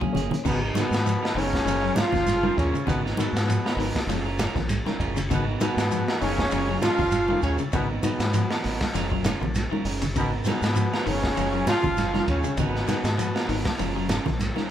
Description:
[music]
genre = afrobeat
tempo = 99 BPM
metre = 4/4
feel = swing 55% on 16ths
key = G# dorian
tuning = A4 = 440 Hz
[part]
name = electric guitar at the edge of break-up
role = arpeggios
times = 0.0-14.7 s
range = C#3 to F#3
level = -32 LUFS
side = left 7 dB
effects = none
[part]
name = electric guitar at the edge of break-up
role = stabs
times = 0.0-14.7 s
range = E#3 to A#4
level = -32 LUFS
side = right 6 dB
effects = none
[part]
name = deep dub fingered electric bass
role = bass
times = 0.0-14.6 s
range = F#1 to G#2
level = -29 LUFS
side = equal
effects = none
[part]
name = crunchy breakbeat drum kit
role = drums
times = 0.0-14.6 s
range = crash cymbal, hi-hat, kick drum, ride cymbal, snare drum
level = -29 LUFS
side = equal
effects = none
[part]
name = congas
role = percussion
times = 0.0-14.7 s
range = none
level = -31 LUFS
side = right 2 dB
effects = none
[part]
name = shekere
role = percussion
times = 0.2-14.6 s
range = none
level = -34 LUFS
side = right 2 dB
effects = none
[part]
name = bright trombone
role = melody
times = 0.5-13.8 s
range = B3 to E#4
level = -28 LUFS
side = equal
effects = none
[part]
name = bright trumpet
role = second line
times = 0.5-13.8 s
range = B4 to E#5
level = -37 LUFS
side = right 4 dB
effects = none
[part]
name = raspy baritone saxophone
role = second line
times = 0.5-13.8 s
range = B2 to E#3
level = -32 LUFS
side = left 2 dB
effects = none
[sound]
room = moderate large studio reverb, RT60 1.5 s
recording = band playing live in one room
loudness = -22 LUFS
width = side -10 dB against mid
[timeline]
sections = 0.4-14.7 A section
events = drum fill 0.0-0.4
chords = 0.4 G#m9; 1.7 F#maj9; 2.9 G#m9; 4.1 F#maj9; 5.3 G#m9; 6.5 F#maj9; 7.7 G#m9; 8.9 F#maj9; 10.2 G#m9; 11.4 F#maj9; 12.6 G#m9; 13.8 F#maj9

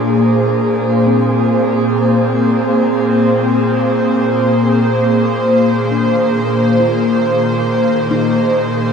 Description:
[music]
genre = ambient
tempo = 68 BPM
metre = 3/4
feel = straight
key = Bb mixolydian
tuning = A4 = 436 Hz
[part]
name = airy breathy pad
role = sustained chords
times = 0.0-8.9 s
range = Bb2 to C5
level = -12 LUFS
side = equal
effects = chorus
[part]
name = handpan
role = arpeggios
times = 0.0-8.9 s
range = Bb3 to Bb4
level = -26 LUFS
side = right 2 dB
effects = none
[sound]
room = wet shimmer reverb, RT60 8.0 s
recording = none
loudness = -12 LUFS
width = side -6 dB against mid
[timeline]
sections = 0.0-8.9 A section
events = none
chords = 0.0 Bb7; 5.5 Ab/Bb

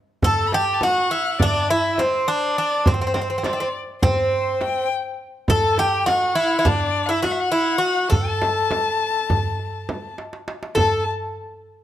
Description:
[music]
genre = Turkish makam ensemble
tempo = 205 BPM (eighths)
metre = 9/8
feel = straight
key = A makam huseyni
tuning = A4 = 441 Hz
[part]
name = Greek bouzouki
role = melody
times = 0.2-11.0 s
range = C4 to A4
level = -21 LUFS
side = right 1 dB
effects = none
[part]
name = rich violin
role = second line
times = 0.2-11.0 s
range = C5 to B5-29c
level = -25 LUFS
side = left 7 dB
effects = none
[part]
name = darbuka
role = percussion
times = 0.2-11.0 s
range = none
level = -25 LUFS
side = right 2 dB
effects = none
[part]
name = frame drum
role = percussion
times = 0.2-11.0 s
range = none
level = -24 LUFS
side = right 1 dB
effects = none
[sound]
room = light reverb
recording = close, detailed microphones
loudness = -18 LUFS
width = side -12 dB against mid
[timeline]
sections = 0.2-10.8 A section; 10.8-11.8 B section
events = drum fill 10.2-10.8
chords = none

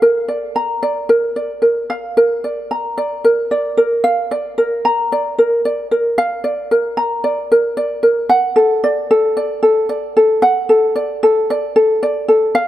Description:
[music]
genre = pop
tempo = 112 BPM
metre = 4/4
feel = straight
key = unclear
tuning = A4 = 440 Hz
[part]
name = ukulele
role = solo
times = 0.0-12.7 s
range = A4 to Bb5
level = -13 LUFS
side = equal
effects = none
[sound]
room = light reverb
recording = faint mains hum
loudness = -13 LUFS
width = side -13 dB against mid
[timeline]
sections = 0.0-4.0 A section; 4.0-8.3 B section; 8.3-12.7 C section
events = none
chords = 0.0 Bb; 8.3 D

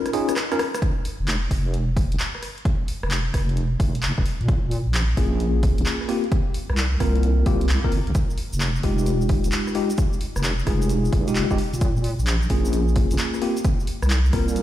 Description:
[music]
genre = UK garage, two-step garage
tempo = 131 BPM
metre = 4/4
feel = swing 66% on 16ths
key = F minor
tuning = A4 = 436 Hz
[part]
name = tine electric piano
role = stabs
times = 0.0-0.6, 5.2-14.6 s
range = Ab3 to Bb4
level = -25 LUFS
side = left 1 dB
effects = medium stereo tremolo, tape echo
[part]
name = punchy analog drum machine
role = drums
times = 0.1-14.6 s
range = cabasa, handclaps, hi-hat, rim click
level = -29 LUFS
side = equal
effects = none
[part]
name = electronic kick drum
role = drums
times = 0.8-14.5 s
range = none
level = -23 LUFS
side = equal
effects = none
[part]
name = deep soft wobble bass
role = bass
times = 1.2-14.6 s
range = Eb1 to Bb2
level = -22 LUFS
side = equal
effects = chorus
[sound]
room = digital ambience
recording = played on a big sound system in a bare room, stone room reverb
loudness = -20 LUFS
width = side -13 dB against mid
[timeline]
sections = 0.8-14.6 A section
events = break 0.0-0.8; drum fill 0.0-0.8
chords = 0.0 Eb9sus4; 0.8 N.C.; 4.3 Bbm7; 6.1 C7sus4; 8.1 Fm9; 11.6 Bbm7; 13.4 C7sus4

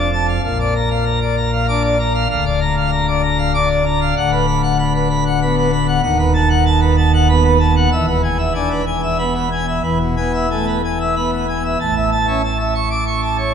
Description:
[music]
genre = classical, organ toccata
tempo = 96 BPM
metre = 3/4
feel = straight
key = unclear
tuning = A4 = 438 Hz
[part]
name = pipe organ, plenum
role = solo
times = 0.0-13.5 s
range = D1 to D6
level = -14 LUFS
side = equal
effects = none
[sound]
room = wet church reverb, RT60 3.9 s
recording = minimal, uncompressed stereo recording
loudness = -14 LUFS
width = side -7 dB against mid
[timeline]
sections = 0.0-11.8 A section; 11.8-13.5 B section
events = none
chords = 0.4 Bb; 2.3 Bb/D; 4.2 Bm/D; 6.0 B7/D#; 7.9 E; 11.8 A

